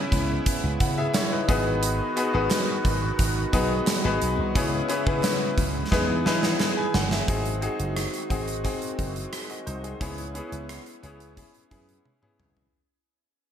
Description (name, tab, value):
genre	1980s-style pop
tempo	88 BPM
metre	4/4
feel	straight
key	unclear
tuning	A4 = 445 Hz
part	bright grand piano	accompaniment	0.0-12.8 s	B3 to G#5	-27 LUFS	left 2 dB	shimmer reverb
part	phased analog pad	sustained chords	0.0-12.7 s	C#3 to G#4	-32 LUFS	right 1 dB	phaser, chorus, shimmer reverb
part	slap bass with an envelope filter	bass	0.1-12.7 s	F#1 to E3	-29 LUFS	equal	none
part	gated 80s drum kit	drums	0.1-12.7 s	hi-hat, kick drum, rim click, snare drum, tambourine, toms	-27 LUFS	right 1 dB	gated reverb
part	group handclap	percussion	1.1-6.8 s	none	barely audible	none	none
room	moderate lush hall reverb, RT60 1.8 s, small room ambience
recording	bright 1980s-style digital production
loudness	-23 LUFS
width	side -9 dB against mid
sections	0.0-7.3 A section; 7.3-12.7 B section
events	drum fill 5.9-7.3, 12.1-12.7; fade-out 7.3-12.7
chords	0.0 C#m7; 1.5 G#m7; 4.6 C#m7; 5.9 Emaj7; 7.3 G#7; 10.0 C#m7